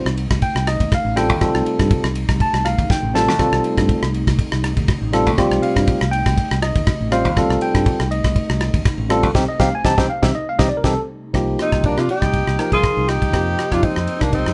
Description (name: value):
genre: electric jazz fusion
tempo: 121 BPM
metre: 4/4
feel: swing 54% on 16ths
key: C dorian, C minor from 11.3 s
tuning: A4 = 440 Hz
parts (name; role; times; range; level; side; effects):
- barky tine electric piano; accompaniment; 0.0-14.0 s; F3 to A5; -22 LUFS; equal; none
- ethereal airy pad; sustained chords; 0.0-14.5 s; C3 to Bb4; -29 LUFS; equal; ensemble chorus, built-in reverb
- fingered electric bass; bass; 0.1-14.5 s; A1 to C3; -24 LUFS; equal; none
- damped 70s drum kit; drums; 0.1-14.5 s; kick drum, ride cymbal, rim click, snare drum; -23 LUFS; equal; none
- mellow alto saxophone; melody; 11.6-14.5 s; D4 to Ab4; -23 LUFS; equal; none
- bright tenor saxophone; second line; 11.6-14.5 s; Bb3 to F4; -28 LUFS; equal; none
room: moderate studio reverb, RT60 0.5 s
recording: band playing live in one room, nothing above 10.6 kHz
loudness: -18 LUFS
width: mono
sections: 0.0-11.3 A section; 11.3-14.5 B section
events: drum fill 2.9-3.4, 10.8-11.3; band accent 9.4-11.3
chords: 0.0 Cm6; 11.3 Cm7; 13.3 Fm11